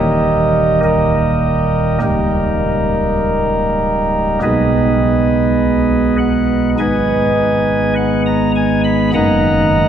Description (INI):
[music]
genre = classical, chorale-style piece for pipe organ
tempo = 51 BPM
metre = 4/4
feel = straight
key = G# minor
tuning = A4 = 439 Hz
[part]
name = pipe organ, flutes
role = solo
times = 0.0-9.9 s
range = C#1 to B5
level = -12 LUFS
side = right 1 dB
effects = none
[sound]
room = wet cathedral reverb, RT60 5.4 s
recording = heard from further back in the room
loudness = -12 LUFS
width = side -9 dB against mid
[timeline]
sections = 0.0-9.9 A section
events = none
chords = 0.0 D#; 2.0 D#7/C#; 4.4 G#m/B; 6.8 G#m; 9.2 D#m/F#